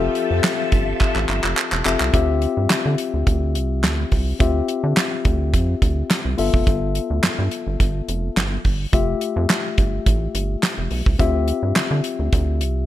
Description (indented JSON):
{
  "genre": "early-eighties boogie funk",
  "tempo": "106 BPM",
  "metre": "4/4",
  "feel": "straight",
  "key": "D dorian",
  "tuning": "A4 = 439 Hz",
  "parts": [
    { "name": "mellow tine electric piano", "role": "accompaniment", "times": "0.0-12.9 s", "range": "A3 to E5", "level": "-24 LUFS", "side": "left 6 dB", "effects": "none" },
    { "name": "phased string machine", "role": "sustained chords", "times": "0.0-2.1 s", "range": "F3 to E5", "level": "-28 LUFS", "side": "left 2 dB", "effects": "ensemble chorus, phaser" },
    { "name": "rubbery square bass", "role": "bass", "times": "0.0-12.9 s", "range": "E1 to D3", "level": "-22 LUFS", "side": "right 1 dB", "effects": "none" },
    { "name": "damped 70s drum kit", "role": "drums", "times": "0.2-12.7 s", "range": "handclaps, hi-hat, kick drum, snare drum", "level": "-20 LUFS", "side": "right 1 dB", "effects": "gated reverb" },
    { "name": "group handclap", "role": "percussion", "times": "0.4-11.9 s", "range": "none", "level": "-28 LUFS", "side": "right 7 dB", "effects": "none" }
  ],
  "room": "little or no reverb",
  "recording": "none",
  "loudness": "-18 LUFS",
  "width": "side -13 dB against mid",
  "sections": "0.0-2.1 A section; 2.1-12.9 B section",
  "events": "drum fill 1.0-2.1",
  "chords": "0.0 Fmaj9; 2.1 Dm11; 6.4 G13; 8.9 Fmaj9; 11.2 Dm11"
}